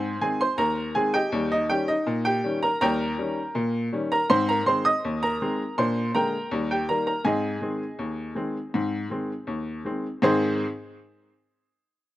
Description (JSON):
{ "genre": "ragtime piano", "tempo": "81 BPM", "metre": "2/4", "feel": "straight", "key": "Ab major", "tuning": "A4 = 440 Hz", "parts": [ { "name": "clear upright piano", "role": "solo", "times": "0.0-10.6 s", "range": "Eb2 to Eb6", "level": "-23 LUFS", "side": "equal", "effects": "none" } ], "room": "little or no reverb", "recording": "recorded outdoors, with no room sound", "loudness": "-23 LUFS", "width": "side -15 dB against mid", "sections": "0.0-10.2 A section; 10.2-11.7 B section", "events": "none", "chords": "0.0 Ab; 1.3 Eb7; 4.3 Ab; 5.8 Bb7; 6.5 Eb; 7.2 Ab" }